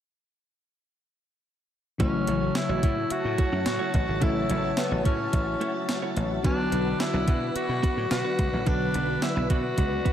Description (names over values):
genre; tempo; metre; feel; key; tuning
1980s-style pop; 108 BPM; 4/4; straight; A major; A4 = 442 Hz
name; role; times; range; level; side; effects
breathy tenor saxophone; melody; 2.0-10.1 s; B3 to F#4; -30 LUFS; equal; tape echo, shimmer reverb
FM electric piano; accompaniment; 2.0-10.1 s; C#3 to F#4; -31 LUFS; left 3 dB; chorus, phaser, shimmer reverb
ensemble organ-string; sustained chords; 2.0-10.1 s; F#4 to B5; -33 LUFS; left 1 dB; ensemble chorus, shimmer reverb
direct-recorded clean electric guitar; riff; 2.0-10.1 s; A3 to C#5; -36 LUFS; right 4 dB; wide subtle chorus, tape echo, shimmer reverb
dry thumbed slap bass; bass; 2.0-10.0 s; G#1 to B2; -30 LUFS; equal; none
clean 12-bit digital drum machine; drums; 2.0-10.1 s; hi-hat, kick drum, snare drum, tambourine; -27 LUFS; equal; overdrive
room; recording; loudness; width
wet plate reverb, RT60 2.2 s; dreamy mix soaked in reverb; -23 LUFS; side -10 dB against mid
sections
2.0-10.1 A section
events
none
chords
2.0 A6; 6.4 Bm